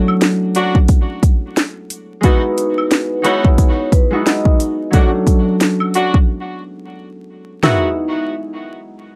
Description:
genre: hip hop, boom-bap hip-hop.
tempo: 89 BPM.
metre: 4/4.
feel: swing 58% on 16ths.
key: E major.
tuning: A4 = 440 Hz.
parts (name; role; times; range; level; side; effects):
concert harp; accompaniment; 0.0-7.9 s; F#3 to F#4; -22 LUFS; equal; cassette tape, high-pass filter, low-pass filter.
woodblock and egg shaker; percussion; 0.1-7.9 s; none; -28 LUFS; equal; none.
house drum kit; drums; 0.2-7.8 s; hi-hat, kick drum, snare drum, toms; -15 LUFS; equal; overdrive.
bright saxophone section; stabs; 0.6-7.9 s; D#3 to F#4; -23 LUFS; equal; high-pass filter, low-pass filter, tape echo.
vibraphone with soft mallets; melody; 2.2-7.9 s; B4 to E5; -25 LUFS; equal; high-pass filter, low-pass filter, tape echo.
room: little or no reverb.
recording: dry, gritty hardware recording, vinyl crackle.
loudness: -15 LUFS.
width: mono.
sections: 0.0-7.6 A section; 7.6-9.2 B section.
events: break 6.3-7.6.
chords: 0.0 Dmaj7; 2.2 Emaj9; 4.9 Dmaj7; 7.6 Emaj9.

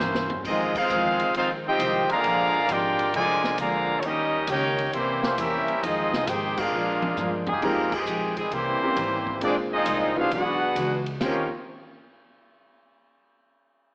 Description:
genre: jazz, big band swing.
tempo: 134 BPM.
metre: 4/4.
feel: swing 68% on 8ths.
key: unclear.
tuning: A4 = 441 Hz.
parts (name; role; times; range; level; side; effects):
picked steel-string acoustic guitar; accompaniment; 0.0-11.5 s; F2 to C5; -33 LUFS; equal; none.
muted trombone section; sustained chords; 0.0-8.0 s; Ab3 to C5; -29 LUFS; equal; none.
upright bass; bass; 0.0-11.5 s; Ab1 to Bb2; -38 LUFS; equal; none.
swinging big-band drum kit; drums; 0.0-11.3 s; crash cymbal, hi-hat, kick drum, ride cymbal, snare drum, toms; -34 LUFS; equal; none.
clear trumpet section; melody; 0.5-11.5 s; G3 to Bb5; -24 LUFS; equal; none.
brilliant trombone section; second line; 0.5-11.5 s; C3 to G4; -28 LUFS; equal; none.
warm concert grand piano; accompaniment; 7.6-11.5 s; Ab3 to Cb5; -30 LUFS; equal; none.
room: moderate large studio reverb, RT60 1.4 s.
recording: AM radio sound.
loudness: -22 LUFS.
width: side -35 dB against mid.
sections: 0.0-7.6 A section; 7.6-11.2 B section; 11.2-13.0 C section.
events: drum fill 0.0-0.5, 6.7-7.6; band accent 0.7, 6.5, 7.8.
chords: 0.5 Fm7; 2.2 Bb7; 4.0 Eb7; 4.9 C7b9; 5.8 Fm7; 6.7 Bb7; 7.6 Fm9; 8.5 C7b9; 9.4 Bb9; 10.3 E9; 11.2 Eb13.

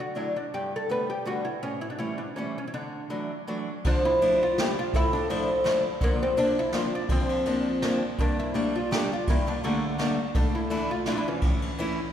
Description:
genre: musette waltz.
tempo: 166 BPM.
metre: 3/4.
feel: swing 54% on 8ths.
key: D major, D minor from 3.9 s.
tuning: A4 = 441 Hz.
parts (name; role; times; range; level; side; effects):
oud; melody; 0.0-12.1 s; D3 to B4; -27 LUFS; equal; none.
fingerpicked steel-string acoustic guitar; accompaniment; 0.1-12.0 s; G2 to E4; -30 LUFS; equal; none.
jazz brush drum kit; drums; 3.8-11.9 s; kick drum, ride cymbal, snare drum; -28 LUFS; equal; none.
room: wet church reverb, RT60 3.5 s.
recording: recorded in a church or concert hall.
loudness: -24 LUFS.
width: side -10 dB against mid.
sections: 0.0-3.9 A section; 3.9-12.1 B section.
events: none.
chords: 0.0 D; 0.5 Gadd9; 1.6 A7; 2.7 Dadd9; 3.9 Dmadd9; 6.0 Bbadd9/D; 8.2 Gmadd9; 10.3 Asus4; 11.4 A.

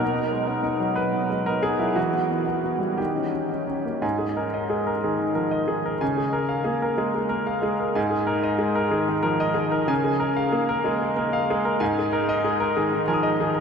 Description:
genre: neoclassical minimalist piano.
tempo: 62 BPM (dotted quarters).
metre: 6/8.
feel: rubato.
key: unclear.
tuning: A4 = 441 Hz.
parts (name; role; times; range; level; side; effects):
clear concert grand piano; solo; 0.0-13.6 s; G#2 to D#6; -21 LUFS; equal; tape echo.
room: wet huge ambient reverb, RT60 7.7 s.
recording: dreamy mix soaked in reverb.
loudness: -21 LUFS.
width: side -6 dB against mid.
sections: 0.0-4.0 A section; 4.0-13.6 B section.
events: none.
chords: 0.0 B6; 2.0 Emadd9; 3.0 D#7; 4.0 G#sus2; 6.0 C#6; 8.0 G#sus2; 9.9 C#6; 11.8 G#sus2.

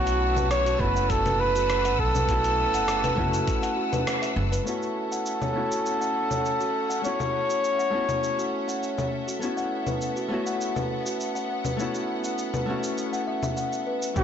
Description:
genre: sunset chillout.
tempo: 101 BPM.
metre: 4/4.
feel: straight.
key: A major.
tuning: A4 = 441 Hz.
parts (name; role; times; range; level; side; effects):
warm flugelhorn; melody; 0.0-9.1, 14.2 s; F#4 to C#5; -26 LUFS; equal; digital delay.
nylon-string guitar; accompaniment; 0.0-14.2 s; A3 to F#4; -31 LUFS; moving between left 4 dB and right 2 dB; auto-pan, low-pass filter, digital delay.
clear symphonic string section; sustained chords; 0.0-14.2 s; B3 to E6; -34 LUFS; left 1 dB; none.
upright bass; bass; 0.0-4.6, 14.2 s; F#1 to B1; -28 LUFS; equal; none.
kalimba; arpeggios; 0.1-14.0 s; F#4 to F#5; -32 LUFS; left 1 dB; low-pass filter, digital delay.
dusty soul sampler-style drum kit; drums; 0.1-14.2 s; cabasa, congas, hi-hat, rim click; -33 LUFS; left 1 dB; soft clipping on snare.
electronic kick drum; drums; 0.8-3.6, 14.2 s; none; -30 LUFS; right 1 dB; none.
room: light reverb, studio ambience.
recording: blown-out, overdriven recording, overdrive, nothing above 7.9 kHz.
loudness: -23 LUFS.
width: side -8 dB against mid.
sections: 0.0-4.7 A section; 4.7-14.2 B section.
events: band accent 4.1; filter sweep on nylon-string guitar 4.7-14.2.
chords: 0.0 B7sus4; 4.7 A6.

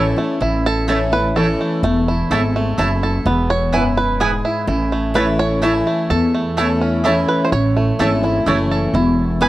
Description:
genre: bluegrass.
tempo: 127 BPM.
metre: 3/4.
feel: straight.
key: A major.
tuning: A4 = 442 Hz.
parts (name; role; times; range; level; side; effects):
bluegrass banjo; melody; 0.0-9.5 s; A3 to C#5; -21 LUFS; right 2 dB; none.
picked steel-string acoustic guitar; accompaniment; 0.0-9.5 s; E2 to E4; -19 LUFS; left 2 dB; none.
mandolin; stabs; 0.0-9.5 s; A3 to A5; -24 LUFS; right 3 dB; none.
upright bass; bass; 0.0-9.5 s; E1 to E2; -20 LUFS; equal; none.
room: light reverb.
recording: worn, warbling old tape, cassette tape, warbly pitch drift.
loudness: -15 LUFS.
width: side -16 dB against mid.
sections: 0.4-9.5 A section.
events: five-string banjo solo 0.4-9.5.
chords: 0.4 A; 3.3 E; 4.7 A; 8.9 E5.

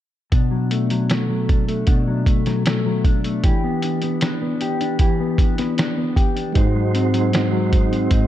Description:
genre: indie pop, bedroom pop.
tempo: 77 BPM.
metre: 4/4.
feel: straight.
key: unclear.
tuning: A4 = 440 Hz.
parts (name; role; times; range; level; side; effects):
mellow electric guitar; accompaniment; 0.3-8.3 s; G#2 to G4; -20 LUFS; left 2 dB; analog chorus, warbly pitch drift.
lo-fi sampler-style drum kit; drums; 0.3-8.3 s; hi-hat, kick drum, snare drum; -19 LUFS; equal; none.
mellow tonewheel organ; accompaniment; 6.5-8.3 s; G#3 to B#4; -23 LUFS; right 8 dB; fast rotary speaker.
room: light reverb, digital ambience.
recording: dark, warm production.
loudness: -17 LUFS.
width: side -12 dB against mid.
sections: 0.3-8.3 A section.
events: none.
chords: 0.3 Bm7; 3.4 Em7; 6.6 G#7.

